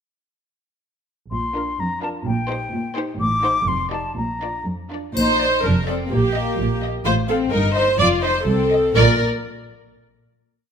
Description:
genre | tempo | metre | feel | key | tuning
cinematic, playful, whimsical film cue | 126 BPM | 2/4 | straight | Bb major | A4 = 440 Hz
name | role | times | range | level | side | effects
silver concert flute | second line | 1.3-4.7 s | G5 to D6 | -24 LUFS | left 2 dB | none
dark studio cello section | bass | 1.3-9.2 s | C2 to Bb2 | -26 LUFS | equal | none
dark studio double bass section | bass | 1.3-9.2 s | F1 to C2 | -24 LUFS | right 3 dB | none
rich studio viola section | accompaniment | 1.5-9.2 s | D4 to D5 | -21 LUFS | right 1 dB | none
rich studio violin section | melody | 1.6-9.2 s | Bb4 to F5 | -26 LUFS | left 2 dB | none
warm studio violin section | second line | 1.6-9.2 s | Bb3 to Bb4 | -27 LUFS | left 4 dB | none
triangle | percussion | 5.2-6.1 s | none | -31 LUFS | left 6 dB | none
room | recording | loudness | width
moderate scoring stage reverb, RT60 1.4 s | none | -18 LUFS | side -7 dB against mid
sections
1.3-5.2 A section; 5.2-9.0 A section; 9.0-9.9 final chord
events
none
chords
1.3 Bb; 2.3 Cm7/Bb; 3.2 Adim7; 3.7 F13; 4.2 Bb; 6.1 Eb/Bb; 7.1 F/A; 7.5 Eb/G; 8.0 F7; 9.0 Bb

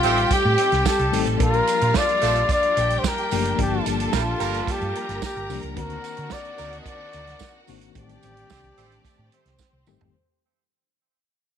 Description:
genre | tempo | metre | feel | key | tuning
disco | 110 BPM | 4/4 | straight | unclear | A4 = 440 Hz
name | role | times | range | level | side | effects
mellow flugelhorn | melody | 0.0-9.6 s | F4 to Eb5 | -23 LUFS | left 2 dB | none
rich studio string section | second line | 0.0-10.1 s | C4 to Bb5 | -30 LUFS | equal | none
mellow reed electric piano | accompaniment | 0.0-10.2 s | Eb3 to Bb4 | -31 LUFS | left 12 dB | fast tremolo
warm studio string section | sustained chords | 0.0-10.1 s | Eb3 to Bb4 | -32 LUFS | right 4 dB | none
warm horn section | stabs | 0.0-9.0 s | F3 to C5 | -30 LUFS | right 16 dB | tape echo
hollow-body short-scale fingered electric bass | bass | 0.0-10.1 s | F#1 to D3 | -26 LUFS | right 1 dB | none
warm soul drum kit | drums | 0.0-10.1 s | hi-hat, kick drum, snare drum, toms | -27 LUFS | right 3 dB | none
tambourine | percussion | 0.0-10.0 s | none | -37 LUFS | right 15 dB | none
room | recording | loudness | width
studio ambience | 1960s-style stereo with parts hard left and right | -19 LUFS | side -8 dB against mid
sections
0.0-10.1 A section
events
fade-out 0.0-10.1; drum fill 9.6-10.1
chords
0.0 Am7b5; 1.4 Bbmaj7; 3.6 Gm7; 5.8 D7b9b13; 8.0 Am7b5

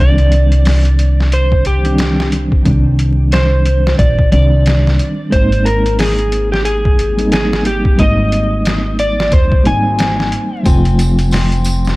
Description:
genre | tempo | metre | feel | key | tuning
trip hop | 90 BPM | 4/4 | swing 59% on 16ths | C minor | A4 = 440 Hz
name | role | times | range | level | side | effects
electric slide guitar | melody | 0.0-10.6 s | G4 to Ab5 | -18 LUFS | equal | tape echo
reed electric piano | accompaniment | 0.0-12.0 s | Eb3 to F4 | -18 LUFS | equal | fast tremolo
upright bass | bass | 0.0-12.0 s | F1 to Eb2 | -13 LUFS | equal | none
trip hop sampler-style drum kit | drums | 0.2-12.0 s | hi-hat, kick drum, snare drum | -16 LUFS | equal | overdrive, small room ambience
clean electric guitar | arpeggios | 10.7-12.0 s | C4 | -24 LUFS | left 3 dB | tape echo
tambourine | percussion | 10.7-12.0 s | none | -30 LUFS | equal | none
room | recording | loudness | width
light reverb, digital ambience | dark, warm production, vinyl crackle | -10 LUFS | side -20 dB against mid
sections
0.0-12.0 A section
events
none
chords
0.0 Cmadd9; 5.3 Abmaj7; 10.7 F

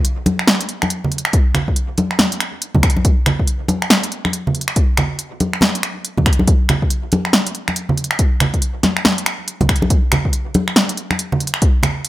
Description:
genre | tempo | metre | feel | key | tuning
dubstep | 140 BPM | 4/4 | swing 62% on 16ths, half-time | none | none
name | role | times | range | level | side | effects
deep house drum kit | drums | 0.0-12.1 s | finger snaps, hi-hat, snare drum | -17 LUFS | equal | none
congas | percussion | 0.3-11.9 s | none | -20 LUFS | equal | none
electronic kick drum | drums | 1.3-11.7 s | none | -16 LUFS | equal | none
room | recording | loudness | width
light reverb | none | -14 LUFS | side -16 dB against mid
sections
0.0-12.1 A section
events
none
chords
none

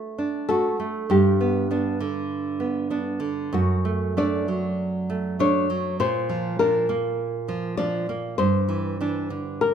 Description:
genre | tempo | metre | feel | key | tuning
romantic duo for nylon-string guitar and classical guitar | 49 BPM | 4/4 | rubato | D major | A4 = 438 Hz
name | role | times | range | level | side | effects
nylon-string guitar | melody | 0.0-9.7 s | F#4 to D5 | -25 LUFS | left 4 dB | none
nylon-string guitar | accompaniment | 0.0-9.7 s | F#2 to F#4 | -24 LUFS | right 3 dB | none
room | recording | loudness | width
moderate recital hall reverb, RT60 1.4 s | minimal, uncompressed stereo recording | -22 LUFS | side -8 dB against mid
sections
0.0-9.7 A section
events
none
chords
0.0 D; 1.1 G; 3.5 D/F#; 6.0 Bb; 8.4 Em7/G

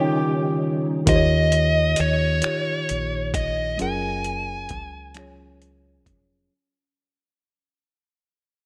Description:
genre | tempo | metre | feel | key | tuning
slow six-eight R&B | 44 BPM (dotted quarters) | 6/8 | straight | unclear | A4 = 441 Hz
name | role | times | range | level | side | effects
nasal lead guitar with a parked wah | melody | 0.0-5.6 s | C#5 to G#5 | -26 LUFS | equal | overdrive
mellow tine electric piano | accompaniment | 0.0-6.5 s | D#3 to C#5 | -27 LUFS | equal | none
percussive tonewheel organ | sustained chords | 0.0-1.0 s | C#3 to D#4 | -30 LUFS | equal | chorus vibrato, slow rotary speaker
warm horn section | stabs | 0.0-0.6 s | D#3 to G4 | -33 LUFS | equal | digital delay
deep dub fingered electric bass | bass | 1.1-6.5 s | E#1 to D#2 | -28 LUFS | equal | none
dusty soul sampler-style drum kit | drums | 1.1-6.3 s | finger snaps, hi-hat, kick drum | -27 LUFS | equal | overdrive
room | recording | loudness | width
moderate lush hall reverb, RT60 2.8 s | bright 1980s-style digital production | -22 LUFS | mono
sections
0.0-1.1 A section; 1.1-6.5 B section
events
break 0.0-1.1; fade-out 1.1-6.5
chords
0.0 D#7; 3.8 F#maj9

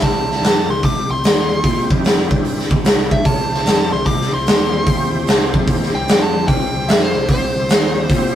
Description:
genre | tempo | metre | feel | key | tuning
blues rock power trio and southern rock | 149 BPM | 4/4 | swing 66% on 8ths | C mixolydian | A4 = 445 Hz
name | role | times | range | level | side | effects
dark smooth lead guitar | melody | 0.0-8.3 s | C5 to D6 | -22 LUFS | equal | overdrive, analog delay
overdriven tonewheel organ | sustained chords | 0.0-8.3 s | C4 to Db5 | -26 LUFS | right 1 dB | slow rotary speaker, chorus vibrato
overdriven picked electric bass | bass | 0.0-8.3 s | C2 to Bb2 | -24 LUFS | left 1 dB | none
huge arena drum kit | drums | 0.0-8.2 s | hi-hat, kick drum, snare drum | -15 LUFS | equal | none
room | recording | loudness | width
light reverb | rough rehearsal-room recording | -13 LUFS | side -11 dB against mid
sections
0.0-8.3 A section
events
lead electric guitar solo 0.0-8.3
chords
0.0 C

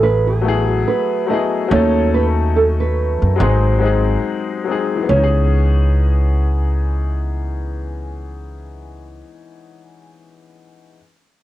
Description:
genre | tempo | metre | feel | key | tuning
lo-fi hip hop | 71 BPM | 4/4 | swing 56% on 16ths | C# minor | A4 = 441 Hz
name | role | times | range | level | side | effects
nylon-string guitar | melody | 0.0-9.2 s | G#4 to D#5 | -20 LUFS | right 4 dB | low-pass filter
clear upright piano | accompaniment | 0.0-11.0 s | E3 to A4 | -21 LUFS | left 6 dB | low-pass filter, cassette tape
upright bass | bass | 0.0-9.2 s | G#1 to F#2 | -16 LUFS | equal | none
room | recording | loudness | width
moderate studio ambience, RT60 0.5 s | home recording on cassette | -14 LUFS | side -14 dB against mid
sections
0.0-5.1 A section; 5.1-8.5 B section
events
none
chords
0.0 F#m11; 1.7 D#m7b5; 3.4 G#7; 5.1 C#m9

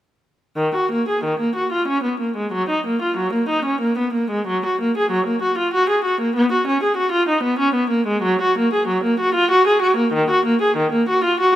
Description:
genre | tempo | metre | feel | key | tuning
classical, baroque-style suite movement for unaccompanied viola | 94 BPM | 3/4 | rubato | unclear | A4 = 439 Hz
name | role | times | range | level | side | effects
warm viola | solo | 0.6-11.6 s | Eb3 to Ab4 | -16 LUFS | equal | none
room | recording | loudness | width
moderate scoring stage reverb, RT60 1.6 s | close, detailed microphones | -17 LUFS | side -12 dB against mid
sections
0.6-11.6 A section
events
none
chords
none

